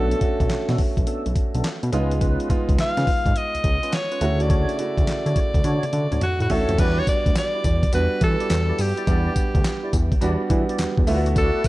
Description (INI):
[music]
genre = R&B, new jack swing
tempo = 105 BPM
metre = 4/4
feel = swing 66% on 16ths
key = E dorian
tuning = A4 = 441 Hz
[part]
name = edgy alto saxophone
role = melody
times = 0.0-11.7 s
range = F#4 to E#5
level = -25 LUFS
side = equal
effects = none
[part]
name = warm concert grand piano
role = accompaniment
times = 0.0-11.7 s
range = C#3 to F#5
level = -27 LUFS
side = right 2 dB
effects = none
[part]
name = tonewheel organ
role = stabs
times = 0.0-11.6 s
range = B3 to D5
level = -32 LUFS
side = equal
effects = overdrive, chorus vibrato, slow rotary speaker
[part]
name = fat analog bass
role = bass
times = 0.0-11.5 s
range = A1 to E3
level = -23 LUFS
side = equal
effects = none
[part]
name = dusty soul sampler-style drum kit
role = drums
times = 0.1-11.7 s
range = crash cymbal, handclaps, hi-hat, kick drum, snare drum, tambourine, toms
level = -22 LUFS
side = equal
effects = none
[sound]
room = digital ambience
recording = dark, warm production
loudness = -19 LUFS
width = side -18 dB against mid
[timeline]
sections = 0.0-6.8 A section; 6.8-11.7 B section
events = drum fill 5.6-6.8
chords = 0.0 Bm7; 1.9 C#7; 4.2 Dmaj7; 6.8 Em7; 11.1 D6